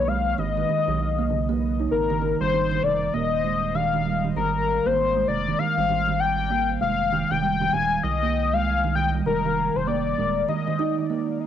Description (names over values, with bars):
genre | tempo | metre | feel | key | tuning
IDM | 98 BPM | 4/4 | swing 62% on 16ths | unclear | A4 = 441 Hz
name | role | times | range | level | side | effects
warm velvety synth lead | melody | 0.0-11.1 s | Bb4 to Ab5 | -23 LUFS | left 6 dB | chorus, tape echo
rubbery square bass | bass | 0.0-10.4 s | Eb1 to C2 | -29 LUFS | equal | none
kalimba | arpeggios | 0.1-11.2 s | C#3 to D#4 | -26 LUFS | right 8 dB | cassette tape, analog delay
room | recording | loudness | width
light reverb, studio reverb | home recording on cassette | -21 LUFS | side -10 dB against mid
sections
0.0-11.5 A section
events
none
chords
0.0 B6; 1.9 Ab5; 6.8 F7sus2